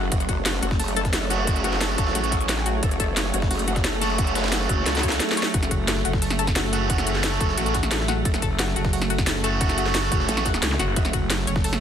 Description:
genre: dark technical drum and bass.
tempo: 177 BPM.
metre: 4/4.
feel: straight.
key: F# minor.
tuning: A4 = 440 Hz.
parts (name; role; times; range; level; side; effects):
sweeping resonant pad; sustained chords; 0.0-11.8 s; F#3 to C#5; -33 LUFS; right 3 dB; chorus, sidechain pumping.
growl bass; bass; 0.0-5.7, 8.3-11.1 s; F#1 to C#2; -27 LUFS; equal; distortion, chorus, tube saturation.
warm studio string section; texture; 0.0-11.8 s; A3; -31 LUFS; right 2 dB; stereo widening, sidechain pumping.
analog pluck; arpeggios; 0.1-11.7 s; F#4 to F#5; -30 LUFS; left 4 dB; chorus, sidechain pumping, digital delay.
drum and bass drum kit; drums; 0.1-11.8 s; hi-hat, snare drum; -26 LUFS; left 1 dB; none.
electronic kick drum; drums; 0.1-11.6 s; none; -25 LUFS; equal; none.
jungle sampler-style drum kit; drums; 0.1-11.8 s; hi-hat, ride cymbal, snare drum; -34 LUFS; right 1 dB; high-pass filter on cymbals, high-pass filter on snare, high-pass filter on hats, high-pass filter on room.
fuzz guitar; stabs; 1.3-10.5 s; A3 to F#4; -28 LUFS; right 5 dB; distortion, digital delay.
swell and zap; sound effects; 5.0-5.5, 10.7-10.8 s; none; -35 LUFS; left 1 dB; none.
growling FM bass; bass; 5.7-11.8 s; F#1 to C#2; -26 LUFS; equal; none.
room: light reverb.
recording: dense, heavily limited modern master.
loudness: -20 LUFS.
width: side -9 dB against mid.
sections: 0.0-11.8 A section.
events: drum fill 4.9-5.5; swell 5.0-5.5.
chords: 0.0 F#m.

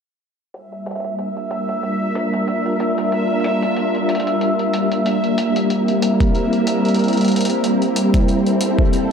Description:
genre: IDM.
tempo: 93 BPM.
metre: 4/4.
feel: swing 56% on 16ths.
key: G dorian.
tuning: A4 = 439 Hz.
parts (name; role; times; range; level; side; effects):
soft string machine; sustained chords; 0.5-9.1 s; G3 to Bb4; -18 LUFS; equal; ensemble chorus, vintage 12-bit sampler grit.
electronic hi-hat; drums; 0.5-9.1 s; none; -30 LUFS; left 1 dB; overdrive, low-pass filter on hats, low-pass filter on room.
bubbling stepped-filter texture; texture; 0.5-9.1 s; E5; -24 LUFS; left 1 dB; chorus, built-in reverb.
electronic kick drum; drums; 6.2-8.9 s; none; -17 LUFS; equal; overdrive.
room: wet echo chamber reverb, RT60 2.1 s.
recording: none.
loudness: -16 LUFS.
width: side -6 dB against mid.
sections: 0.5-9.1 A section.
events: filter sweep on drum 0.5-9.1; filter sweep on string machine 0.5-9.1.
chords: 0.5 Gm7; 5.7 C7.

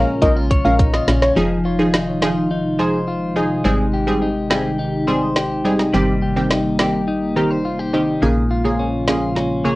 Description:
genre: dancehall.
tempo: 105 BPM.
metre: 4/4.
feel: straight.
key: F minor.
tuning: A4 = 439 Hz.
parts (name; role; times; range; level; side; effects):
soft struck synth lead; melody; 0.0-1.3 s; Db5 to F5; -21 LUFS; left 1 dB; chorus, cassette tape, tape echo.
punchy chord stab; accompaniment; 0.0-9.8 s; Db3 to Bb4; -20 LUFS; right 1 dB; chorus, sidechain pumping.
hollow soft pad; sustained chords; 0.0-9.8 s; C3 to G4; -24 LUFS; right 1 dB; lush chorus, sidechain pumping.
clean electric guitar; arpeggios; 0.0-9.8 s; Bb2 to Db5; -21 LUFS; left 2 dB; none.
woody FM bass; bass; 0.0-9.8 s; F1 to Bb1; -23 LUFS; equal; none.
island pop drum kit; drums; 0.2-9.5 s; hi-hat, kick drum, snare drum; -19 LUFS; equal; cassette tape.
room: moderate studio reverb, RT60 0.6 s.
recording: home recording on cassette.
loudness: -16 LUFS.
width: side -19 dB against mid.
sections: 0.0-1.4 A section; 1.4-9.8 B section.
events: drum fill 0.2-1.4, 9.4-9.8.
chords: 0.0 Bbm7; 1.4 Fm7; 3.6 Abmaj7; 5.9 Eb6/G; 8.2 Bbm7.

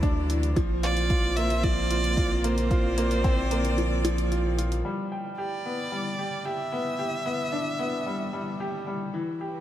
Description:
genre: piano and strings electronica.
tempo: 112 BPM.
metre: 4/4.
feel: straight.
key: unclear.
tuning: A4 = 441 Hz.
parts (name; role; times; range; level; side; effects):
warm string quartet; sustained chords; 0.0-9.6 s; G3 to D5; -36 LUFS; right 1 dB; none.
bright upright piano; riff; 0.0-9.6 s; E3 to G5; -29 LUFS; equal; low-pass filter.
round analog bass; bass; 0.0-4.8 s; Bb1 to D2; -27 LUFS; equal; sidechain pumping.
electronic hi-hat; drums; 0.0-4.8 s; none; -39 LUFS; equal; none.
electronic kick drum; drums; 0.0-3.4 s; none; -26 LUFS; equal; overdrive.
rich violin; melody; 0.8-8.9 s; C5 to E5; -31 LUFS; right 1 dB; ping-pong delay.
room: moderate recital hall reverb, RT60 1.3 s, studio ambience.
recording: none.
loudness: -24 LUFS.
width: side -12 dB against mid.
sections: 0.0-4.9 A section; 4.9-9.6 B section.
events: kick drops out 3.8-4.9.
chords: 0.0 Dadd9; 0.6 Bbsus2; 4.9 G.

